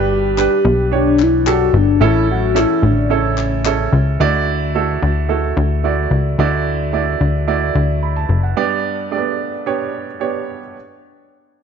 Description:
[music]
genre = piano-driven pop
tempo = 110 BPM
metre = 4/4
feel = straight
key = D major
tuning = A4 = 440 Hz
[part]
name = warm velvety synth lead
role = melody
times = 0.0-3.9 s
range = C#4 to G4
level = -16 LUFS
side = left 3 dB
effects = chorus, phaser
[part]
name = warm upright piano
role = accompaniment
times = 0.0-10.8 s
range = G2 to B5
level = -19 LUFS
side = right 8 dB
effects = none
[part]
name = plucky analog bass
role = bass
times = 0.0-8.5 s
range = F#1 to D2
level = -17 LUFS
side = left 2 dB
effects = none
[part]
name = group handclap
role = percussion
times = 0.4-3.8 s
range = none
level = -27 LUFS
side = left 13 dB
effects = none
[sound]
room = moderate echo chamber reverb, RT60 1.9 s, small room reverb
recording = 1960s-style stereo with parts hard left and right, nothing above 7.7 kHz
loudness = -14 LUFS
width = side -7 dB against mid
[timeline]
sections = 0.0-4.2 A section; 4.2-11.6 B section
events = none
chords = 0.0 G; 2.0 A; 4.2 Dadd9; 8.6 G; 10.7 N.C.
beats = 0.38 0.93 1.47 | 2.02 2.56 3.11 3.65 | 4.20 4.75 5.29 5.84 | 6.38 6.93 7.47 8.02 | 8.56 9.11 9.66 10.20 | 10.75

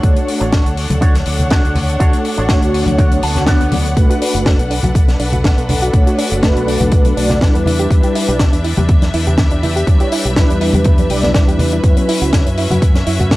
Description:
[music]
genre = nu-disco, nu disco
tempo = 122 BPM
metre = 4/4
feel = swing 53% on 16ths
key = B minor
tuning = A4 = 441 Hz
[part]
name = mellow synth brass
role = accompaniment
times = 0.0-12.4 s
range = F#3 to D5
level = -19 LUFS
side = equal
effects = chorus, analog delay
[part]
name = rich symphonic string section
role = sustained chords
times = 0.0-13.4 s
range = C#4 to F#5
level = -23 LUFS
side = left 1 dB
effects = sidechain pumping
[part]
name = electric guitar with an envelope filter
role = riff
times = 0.0-4.0 s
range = D4 to A5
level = -23 LUFS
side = right 2 dB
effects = lush chorus, low-pass filter, analog delay
[part]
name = fingered electric bass with an envelope filter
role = bass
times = 0.0-13.4 s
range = F#1 to F#2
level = -18 LUFS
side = equal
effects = tube saturation, sidechain pumping
[part]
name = electronic kick drum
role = drums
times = 0.0-13.4 s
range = none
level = -12 LUFS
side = equal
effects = none
[part]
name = tight funk drum kit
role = drums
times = 0.0-13.4 s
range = hi-hat, snare drum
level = -21 LUFS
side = left 1 dB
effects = none
[part]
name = congas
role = percussion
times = 0.9-13.3 s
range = none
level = -20 LUFS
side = left 1 dB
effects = none
[part]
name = swell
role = sound effects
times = 3.2-4.0 s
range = none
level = -27 LUFS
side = left 6 dB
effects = none
[part]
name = soft round pluck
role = arpeggios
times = 4.0-13.4 s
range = A3 to D5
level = -22 LUFS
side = right 2 dB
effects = chorus, sidechain pumping, analog delay
[sound]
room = light reverb, studio ambience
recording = dry, gritty hardware recording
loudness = -11 LUFS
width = side -18 dB against mid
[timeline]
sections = 0.0-13.4 A section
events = clean electric guitar fill 3.0-4.0; swell 3.2-4.0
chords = 0.0 Dmaj7; 4.0 Bm7; 7.7 Em7; 11.8 F#7sus4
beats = | 0.04 0.53 1.02 1.51 | 2.00 2.50 2.99 3.48 | 3.97 4.46 4.95 5.45 | 5.94 6.43 6.92 7.41 | 7.91 8.40 8.89 9.38 | 9.87 10.36 10.86 11.35 | 11.84 12.33 12.82 13.31

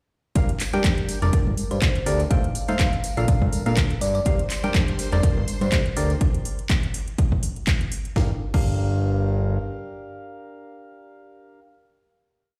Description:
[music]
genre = piano house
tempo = 123 BPM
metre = 4/4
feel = swing 55% on 16ths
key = G minor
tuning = A4 = 439 Hz
[part]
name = percussive organ stab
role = riff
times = 0.4-11.6 s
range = Bb2 to G5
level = -32 LUFS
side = equal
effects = chorus, sidechain pumping, delay
[part]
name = fat analog bass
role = bass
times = 0.4-9.6 s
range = F1 to Bb2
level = -25 LUFS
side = equal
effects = sidechain pumping
[part]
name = electronic kick drum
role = drums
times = 0.4-8.7 s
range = none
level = -25 LUFS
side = equal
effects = overdrive
[part]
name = house drum kit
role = drums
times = 0.4-8.7 s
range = crash cymbal, handclaps, hi-hat, snare drum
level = -32 LUFS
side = equal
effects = overdrive
[part]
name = tambourine and congas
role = percussion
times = 0.4-6.2 s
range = none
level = -36 LUFS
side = equal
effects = none
[part]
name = thumb-piano-like synth pluck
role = melody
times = 1.2-5.8 s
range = Bb4 to F5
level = -34 LUFS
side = equal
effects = chorus, cassette tape, delay
[part]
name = string machine, violins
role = sustained chords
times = 4.3-6.2 s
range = C5 to C6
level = -41 LUFS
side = equal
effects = ensemble chorus, sidechain pumping
[sound]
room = little or no reverb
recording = played on a big sound system in a bare room, stone room reverb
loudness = -23 LUFS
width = mono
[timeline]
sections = 0.4-8.2 drop; 8.2-12.1 final chord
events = drop 0.4-8.2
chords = 0.4 Gm7; 2.3 F7/A; 3.0 Bbmaj7; 4.3 Gm7; 6.2 N.C.; 8.2 Gm7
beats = | 0.35 0.84 1.33 1.82 | 2.31 2.79 3.28 3.77 | 4.26 4.75 5.23 5.72 | 6.21 6.70 7.18 7.67 | 8.16 8.65 9.14 9.62 | 10.11 10.60 11.09 11.57

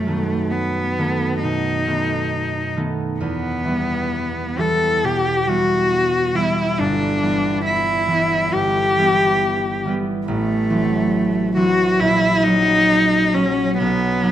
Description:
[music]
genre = classical, romantic duo for cello and harp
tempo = 68 BPM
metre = 4/4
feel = rubato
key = E minor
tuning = A4 = 440 Hz
[part]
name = clear cello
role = melody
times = 0.0-14.3 s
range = A3 to A4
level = -18 LUFS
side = left 1 dB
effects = none
[part]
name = concert harp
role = accompaniment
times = 0.0-14.3 s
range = G1 to D#4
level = -21 LUFS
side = right 1 dB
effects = none
[sound]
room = light reverb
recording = close, detailed microphones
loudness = -16 LUFS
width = side -11 dB against mid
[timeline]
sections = 0.0-14.3 A section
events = none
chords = 0.0 B7/F#; 3.2 Em; 6.8 Em/G; 10.3 F#m7b5/A; 12.0 F#/A#; 13.8 B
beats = 0.53 1.43 2.32 | 3.21 4.12 5.04 5.92 | 6.80 7.65 8.53 9.41 | 10.27 11.12 11.99 12.89 | 13.79

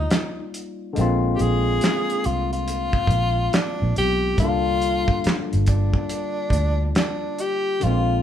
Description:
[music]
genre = R&B, neo-soul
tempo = 70 BPM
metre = 4/4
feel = swing 64% on 16ths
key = C minor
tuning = A4 = 440 Hz
[part]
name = breathy tenor saxophone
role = melody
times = 0.0-8.2 s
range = D4 to Ab4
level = -24 LUFS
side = left 2 dB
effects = none
[part]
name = barky tine electric piano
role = accompaniment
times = 0.0-8.2 s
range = D3 to D5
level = -27 LUFS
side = left 3 dB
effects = none
[part]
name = vintage muted fingered electric bass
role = bass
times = 0.0-8.2 s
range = G1 to D2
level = -23 LUFS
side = right 1 dB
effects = none
[part]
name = cloth-damped thuddy drum kit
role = drums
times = 0.1-8.1 s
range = handclaps, hi-hat, kick drum, snare drum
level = -23 LUFS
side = equal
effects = none
[sound]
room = moderate large studio reverb, RT60 0.9 s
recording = band playing live in one room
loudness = -19 LUFS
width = side -10 dB against mid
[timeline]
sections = 0.0-8.2 A section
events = none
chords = 0.0 Cm11 (rootless); 1.0 Bb9; 4.4 C9sus4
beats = 0.10 | 0.95 1.81 2.67 3.52 | 4.38 5.24 6.09 6.95 | 7.81

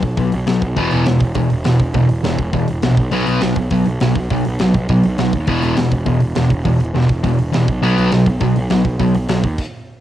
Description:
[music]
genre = punk rock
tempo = 204 BPM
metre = 4/4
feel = straight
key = unclear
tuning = A4 = 440 Hz
[part]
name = fuzz picked electric bass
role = bass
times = 0.0-9.5 s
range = E1 to D#2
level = -20 LUFS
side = right 1 dB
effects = overdrive
[part]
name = tight metal drum kit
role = drums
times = 0.0-9.7 s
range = crash cymbal, hi-hat, kick drum, snare drum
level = -24 LUFS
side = right 1 dB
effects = cassette tape
[part]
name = sludgy distorted guitar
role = riff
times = 0.2-9.4 s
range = E2 to B3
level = -17 LUFS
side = left 4 dB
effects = overdrive, cassette tape
[part]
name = sludgy distorted guitar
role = riff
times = 0.8-9.4 s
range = E2 to B3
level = -18 LUFS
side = right 5 dB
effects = overdrive, cassette tape
[sound]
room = little or no reverb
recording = home recording on cassette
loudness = -14 LUFS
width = side -12 dB against mid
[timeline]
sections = 0.0-10.0 A section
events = stop 9.6-10.0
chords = 0.0 B5; 0.8 E5; 3.0 B5; 5.5 E5; 7.7 B5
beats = 0.18 0.47 | 0.77 1.06 1.36 1.65 | 1.95 2.24 2.54 2.83 | 3.13 3.42 3.71 4.01 | 4.30 4.60 4.89 5.19 | 5.48 5.77 6.07 6.36 | 6.66 6.95 7.24 7.54 | 7.83 8.12 8.41 8.71 | 9.00 9.29 9.59

